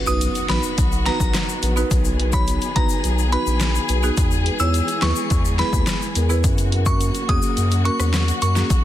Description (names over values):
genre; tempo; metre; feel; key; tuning
dancehall; 106 BPM; 4/4; straight; unclear; A4 = 440 Hz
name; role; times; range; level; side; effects
rich studio string section; sustained chords; 0.0-8.8 s; C#3 to G#4; -28 LUFS; left 4 dB; sidechain pumping
impact; sound effects; 0.0-1.9 s; none; -34 LUFS; left 1 dB; none
glassy synth bell; melody; 0.1-8.5 s; A#5 to E6; -26 LUFS; left 1 dB; chorus, ping-pong delay
marimba with medium mallets; accompaniment; 0.1-8.7 s; A#3 to C#5; -26 LUFS; right 3 dB; sidechain pumping
saturated sub bass; bass; 0.1-8.8 s; A#1 to F#2; -20 LUFS; equal; none
egg shaker; percussion; 0.1-8.8 s; none; -32 LUFS; left 12 dB; none
deep house drum kit; drums; 0.2-8.8 s; hi-hat, kick drum, rim click, snare drum; -22 LUFS; equal; overdrive, vintage 12-bit sampler grit
room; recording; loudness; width
little or no reverb; dense, heavily limited modern master; -17 LUFS; side -12 dB against mid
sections
0.0-8.8 A section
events
impact 0.0-1.9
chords
0.0 B; 4.2 E; 6.4 F#